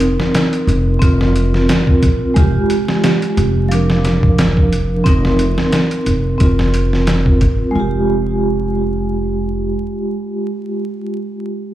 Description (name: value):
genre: trip hop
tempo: 89 BPM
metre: 4/4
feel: swing 55% on 16ths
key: F dorian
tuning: A4 = 440 Hz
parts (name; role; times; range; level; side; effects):
- vibraphone with medium mallets; accompaniment; 0.0-11.7 s; F3 to Bb4; -17 LUFS; right 1 dB; tremolo, tape echo
- upright bass; bass; 0.0-9.7 s; F1 to Bb1; -17 LUFS; equal; none
- trip hop sampler-style drum kit; drums; 0.0-7.6 s; hi-hat, kick drum, snare drum; -16 LUFS; equal; overdrive, studio reverb
room: studio ambience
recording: played on a big sound system in a bare room, large studio reverb, vinyl crackle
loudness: -13 LUFS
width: side -13 dB against mid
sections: 0.0-7.8 A section; 7.8-10.4 B section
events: none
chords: 0.0 Cm7/F; 1.0 Bbsus2/F; 2.4 Fmadd9; 3.7 Bb/F; 5.1 Cm7/F; 6.4 Bbsus2/F; 7.8 Fmadd9